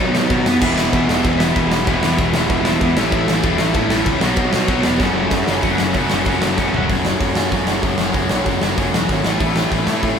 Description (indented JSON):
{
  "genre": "punk rock",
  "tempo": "191 BPM",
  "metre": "4/4",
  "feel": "straight",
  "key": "F# minor",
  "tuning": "A4 = 440 Hz",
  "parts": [
    { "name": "cranked stack guitar", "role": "riff", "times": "0.0-10.2 s", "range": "E2 to B3", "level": "-21 LUFS", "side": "left 6 dB", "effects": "overdrive" },
    { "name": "high-gain distorted guitar", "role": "riff", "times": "0.0-6.9 s", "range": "F#2 to F#4", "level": "-23 LUFS", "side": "left 1 dB", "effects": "distortion" },
    { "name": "raw garage guitar", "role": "riff", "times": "0.0-10.2 s", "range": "F#2 to F#4", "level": "-22 LUFS", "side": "right 4 dB", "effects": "overdrive" },
    { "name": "fuzz picked electric bass", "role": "bass", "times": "0.0-10.2 s", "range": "E1 to B2", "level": "-23 LUFS", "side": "right 1 dB", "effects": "overdrive" },
    { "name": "big rock drum kit", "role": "drums", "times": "0.1-10.1 s", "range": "crash cymbal, hi-hat, kick drum, ride cymbal, snare drum, toms", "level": "-19 LUFS", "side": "equal", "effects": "none" }
  ],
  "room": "light reverb",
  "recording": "band playing live in one room",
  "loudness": "-15 LUFS",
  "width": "side -7 dB against mid",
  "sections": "0.0-5.6 A section; 5.6-6.9 B section; 6.9-10.2 C section",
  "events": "drum fill 5.0-5.6, 6.6-6.9",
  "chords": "0.0 B; 0.6 E; 3.0 A; 4.2 B; 5.0 F#m; 9.2 A",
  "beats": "0.30 | 0.62 0.93 1.25 1.56 | 1.87 2.19 2.50 2.81 | 3.13 3.44 3.75 4.07 | 4.38 4.69 5.01 5.32 | 5.63 5.95 6.26 6.58 | 6.89 7.20 7.52 7.83 | 8.14 8.46 8.77 9.09 | 9.40 9.71 10.03"
}